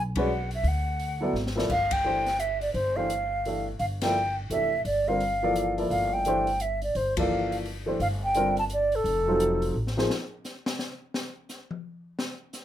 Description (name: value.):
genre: modal jazz.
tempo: 172 BPM.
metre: 3/4.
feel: swing 62% on 8ths.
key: G dorian.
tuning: A4 = 440 Hz.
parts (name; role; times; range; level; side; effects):
mellow hollow silver concert flute; melody; 0.0-9.8 s; A4 to A5; -26 LUFS; right 1 dB; none.
upright bass; bass; 0.0-10.1 s; F1 to D2; -32 LUFS; equal; none.
dark baby grand piano; accompaniment; 0.2-10.1 s; D3 to D5; -28 LUFS; equal; none.
open jazz drum kit; drums; 0.2-12.6 s; crash cymbal, hi-hat, kick drum, ride cymbal, snare drum, toms; -35 LUFS; left 2 dB; none.
room: moderate club reverb, RT60 0.7 s.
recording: minimal, uncompressed stereo recording.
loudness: -24 LUFS.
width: side -11 dB against mid.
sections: 0.0-1.7 A section; 1.7-10.1 B section; 10.1-12.6 C section.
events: band accent 0.1, 1.9, 4.0, 7.1; drum fill 1.3-1.7, 9.8-10.1; drum solo 10.1-12.6.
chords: 0.0 Bmadd9; 0.6 Dadd9; 1.7 G9sus4; 9.1 F7b9; 10.1 N.C..